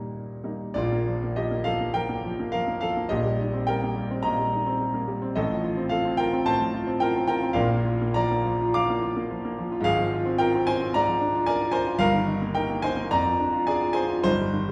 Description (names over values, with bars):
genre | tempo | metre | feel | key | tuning
classical, romantic character piece for solo piano | 85-113 BPM | 4/4 | rubato | Bb major | A4 = 441 Hz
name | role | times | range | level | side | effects
clear grand piano | solo | 0.0-14.7 s | G1 to Eb6 | -25 LUFS | equal | none
room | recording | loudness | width
wet recital hall reverb, RT60 1.4 s | heard from further back in the room | -25 LUFS | mono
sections
0.8-14.7 A section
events
none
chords
0.0 Eb; 0.8 Bb; 3.1 Cm7/Bb; 5.3 F7/A; 7.5 Bb; 9.8 Fm/Ab; 10.9 Bb7/Ab; 12.0 Eb/G; 13.1 Ddim/F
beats
0.08 | 0.75 1.36 1.94 2.53 | 3.11 3.67 4.23 4.78 | 5.33 5.89 6.43 7.00 | 7.55 8.14 8.71 9.28 | 9.83 10.37 10.91 11.45 | 12.00 12.56 13.12 13.69 | 14.26